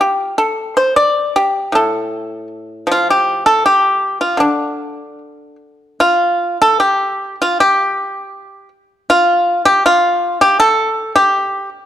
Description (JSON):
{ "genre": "chinese traditional, Chinese solo plucked strings", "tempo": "74-81 BPM", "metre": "2/4", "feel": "rubato", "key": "D yu mode", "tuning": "A4 = 440 Hz", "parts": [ { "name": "pipa", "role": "solo", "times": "0.0-11.7 s", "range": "A2 to D5", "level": "-12 LUFS", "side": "equal", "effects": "none" } ], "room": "moderate recital hall reverb, RT60 1.6 s", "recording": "dark, warm production", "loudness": "-12 LUFS", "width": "side -11 dB against mid", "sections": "0.0-6.0 A section; 6.0-11.9 B section", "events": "none", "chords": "none" }